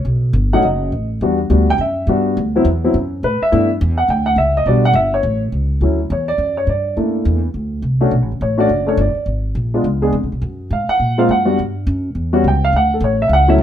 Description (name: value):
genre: jazz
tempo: 208 BPM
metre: 4/4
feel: swing 61% on 8ths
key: D major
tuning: A4 = 439 Hz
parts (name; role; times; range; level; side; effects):
- dark baby grand piano; melody; 0.0-13.6 s; F#3 to G5; -16 LUFS; left 1 dB; none
- upright bass; bass; 0.0-13.6 s; F#1 to A#2; -18 LUFS; equal; none
room: moderate studio reverb, RT60 0.7 s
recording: minimal, uncompressed stereo recording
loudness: -14 LUFS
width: side -10 dB against mid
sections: 0.0-5.8 A section; 5.8-13.6 B section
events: none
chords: 0.1 B7; 1.2 Em7; 2.4 D69; 3.5 G5; 4.7 Gmaj7; 5.2 A; 5.8 Dmaj7; 7.0 F#7alt; 8.1 Bm9 (rootless); 9.3 G#sus2; 9.8 C#7; 10.4 F#maj9; 11.6 N.C.; 12.2 C#dim; 12.7 Dmaj7